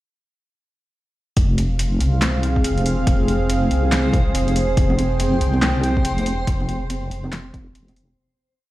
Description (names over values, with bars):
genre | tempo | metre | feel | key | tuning
deep dubstep | 141 BPM | 4/4 | swing 62% on 16ths, half-time | F minor | A4 = 440 Hz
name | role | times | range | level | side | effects
dark analog pad | sustained chords | 1.7-8.1 s | C4 to G5 | -24 LUFS | right 1 dB | chorus
deep soft wobble bass | bass | 1.4-8.2 s | F1 to C2 | -20 LUFS | equal | chorus
deep house drum kit | drums | 1.4-8.1 s | handclaps, hi-hat, snare drum | -26 LUFS | equal | studio ambience
electronic kick drum | drums | 1.4-7.6 s | none | -19 LUFS | equal | studio ambience
backwards swelling texture | texture | 2.2-8.2 s | C5 | -30 LUFS | right 2 dB | built-in reverb
congas | percussion | 4.8-7.9 s | none | -27 LUFS | right 2 dB | dub echo
room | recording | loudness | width
light reverb, digital ambience | played on a big sound system in a bare room, stone room reverb | -17 LUFS | side -16 dB against mid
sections
1.4-8.2 drop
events
drop 1.4-8.2; fade-out 5.9-8.2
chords
1.4 Fm